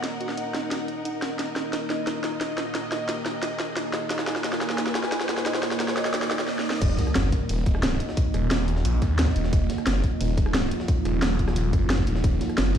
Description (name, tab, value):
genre	dark technical drum and bass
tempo	177 BPM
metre	4/4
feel	straight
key	Eb minor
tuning	A4 = 440 Hz
part	deep dark ambient pad	sustained chords	0.0-12.8 s	Bb3 to Eb5	-31 LUFS	right 2 dB	chorus, built-in reverb, sidechain pumping
part	soft round pluck	arpeggios	0.0-6.4 s	Eb4 to Eb5	-33 LUFS	right 3 dB	chorus, cassette tape, sidechain pumping, tape echo
part	drum and bass drum kit	drums	0.0-12.8 s	crash cymbal, hi-hat, rim click, snare drum	-28 LUFS	equal	high-pass filter on snare, studio reverb, high-pass filter on hats, high-pass filter on cymbals
part	riser and impact	sound effects	0.3-8.2 s	none	-33 LUFS	equal	none
part	dark studio string section	texture	0.0-6.5 s	Eb4 to Ab5	-34 LUFS	left 2 dB	sidechain pumping
part	snarling distorted saw bass	bass	6.8-12.7 s	Eb1 to Eb2	-24 LUFS	equal	distortion, overdrive, sidechain pumping
part	electronic kick drum	drums	6.8-12.8 s	none	-24 LUFS	equal	studio reverb
part	jungle sampler-style drum kit	drums	6.8-12.8 s	hi-hat, snare drum	-37 LUFS	right 1 dB	high-pass filter on hats, studio reverb, high-pass filter on snare, high-pass filter on room
room	light reverb, digital ambience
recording	played on a big sound system in a bare room, stone room reverb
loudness	-23 LUFS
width	side -9 dB against mid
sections	0.0-6.8 A section; 6.8-12.8 B section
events	build-up 0.0-6.8; drum fill 0.0-6.5, 6.5-6.8; filter sweep on ambient pad 0.0-6.8; riser 0.3-6.8; drop 6.8-12.8; impact 6.8-8.2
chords	0.0 Eb5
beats	| 0.04 0.38 0.71 1.05 | 1.39 1.73 2.07 2.41 | 2.75 3.09 3.43 3.77 | 4.10 4.44 4.78 5.12 | 5.46 5.80 6.14 6.48 | 6.82 7.16 7.49 7.83 | 8.17 8.51 8.85 9.19 | 9.53 9.87 10.21 10.54 | 10.88 11.22 11.56 11.90 | 12.24 12.58